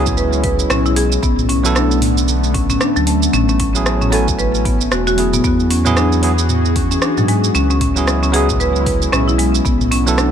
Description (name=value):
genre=organic downtempo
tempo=114 BPM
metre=4/4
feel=swing 59% on 16ths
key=unclear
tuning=A4 = 440 Hz
part: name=bell-like tine electric piano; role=accompaniment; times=0.0-10.3 s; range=F#3 to G#5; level=-22 LUFS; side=right 4 dB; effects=sidechain pumping, tape echo
part: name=warbly tape-like pad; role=sustained chords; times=0.0-10.3 s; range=C#3 to G#4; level=-22 LUFS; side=left 2 dB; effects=chorus, built-in reverb, sidechain pumping
part: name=marimba with medium hard mallets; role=arpeggios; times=0.0-10.3 s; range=F#3 to B4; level=-18 LUFS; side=equal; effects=tape echo
part: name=round analog bass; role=bass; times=0.0-10.3 s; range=E1 to G#2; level=-18 LUFS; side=equal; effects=sidechain pumping
part: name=afro-pop drum kit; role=drums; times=0.1-10.3 s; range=hi-hat, rim click, shaker, toms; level=-21 LUFS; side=right 2 dB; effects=none
part: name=electronic kick drum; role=drums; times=0.1-9.8 s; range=none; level=-21 LUFS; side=equal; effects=none
room=digital ambience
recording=none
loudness=-13 LUFS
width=side -8 dB against mid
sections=0.0-10.3 A section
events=none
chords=0.0 C#m7; 1.2 Bm9; 3.3 Amaj9; 5.4 E13; 7.5 C#m7; 9.7 Bm9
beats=0.18 0.70 | 1.23 1.76 2.28 2.81 | 3.33 3.86 4.39 4.91 | 5.44 5.97 6.49 7.02 | 7.55 8.07 8.60 9.12 | 9.65 10.18